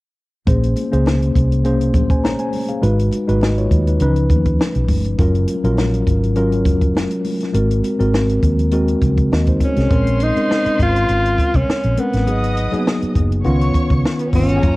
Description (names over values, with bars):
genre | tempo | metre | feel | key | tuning
lush 1970s-style soul | 102 BPM | 4/4 | swing 54% on 16ths | Bb minor | A4 = 439 Hz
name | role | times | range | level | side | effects
mellow tine electric piano | accompaniment | 0.5-14.8 s | Db3 to Bb5 | -19 LUFS | left 1 dB | medium stereo tremolo, cassette tape
vintage muted fingered electric bass | bass | 0.5-14.8 s | Gb1 to Eb2 | -18 LUFS | equal | none
compact cocktail drum kit | drums | 0.5-14.8 s | hi-hat, kick drum, snare drum | -19 LUFS | equal | cassette tape
congas | percussion | 0.8-9.8 s | none | -30 LUFS | right 3 dB | none
breathy tenor saxophone | melody | 9.6-14.8 s | Cb4 to F4 | -19 LUFS | equal | cassette tape
warm studio string section | second line | 9.9-14.8 s | Cb4 to Eb6 | -28 LUFS | equal | cassette tape
room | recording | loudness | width
studio ambience | home recording on cassette | -14 LUFS | side -20 dB against mid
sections
0.5-9.9 A section; 9.9-14.8 B section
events
none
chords
0.5 Bbm9; 2.8 Abm7; 4.0 Db9; 5.2 Gbmaj7; 7.5 Ab9; 9.9 Bbm9; 12.3 Abm7; 13.5 Db9